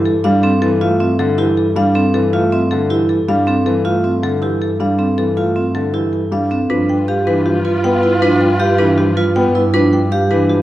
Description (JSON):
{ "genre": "classical, minimalist pattern music", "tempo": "158 BPM", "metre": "4/4", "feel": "straight", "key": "G mixolydian", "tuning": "A4 = 439 Hz", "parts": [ { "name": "marimba with medium mallets", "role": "melody", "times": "0.0-10.6 s", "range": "G4 to G5", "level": "-19 LUFS", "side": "left 4 dB", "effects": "none" }, { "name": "dark grand piano", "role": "accompaniment", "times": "0.0-10.6 s", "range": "D3 to D4", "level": "-19 LUFS", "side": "left 1 dB", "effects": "none" }, { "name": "vibraphone with medium hard mallets", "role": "arpeggios", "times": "0.0-10.6 s", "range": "C4 to G4", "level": "-17 LUFS", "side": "right 3 dB", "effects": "none" }, { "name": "rich double bass", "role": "bass", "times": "0.0-10.6 s", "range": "G2", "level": "-20 LUFS", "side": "right 2 dB", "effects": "none" }, { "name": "bright wooden-headed alto flute", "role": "second line", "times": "6.7-9.5 s", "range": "F4", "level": "-21 LUFS", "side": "equal", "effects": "none" }, { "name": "dark symphonic violin section", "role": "sustained chords", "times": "6.7-9.5 s", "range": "F4 to B4", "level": "-25 LUFS", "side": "left 2 dB", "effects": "none" } ], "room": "moderate recital hall reverb, RT60 1.6 s", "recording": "worn, warbling old tape, cassette tape, warbly pitch drift", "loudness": "-13 LUFS", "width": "side -14 dB against mid", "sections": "0.0-6.7 A section; 6.7-10.6 B section", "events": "none", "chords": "0.0 G9sus4; 6.7 G7" }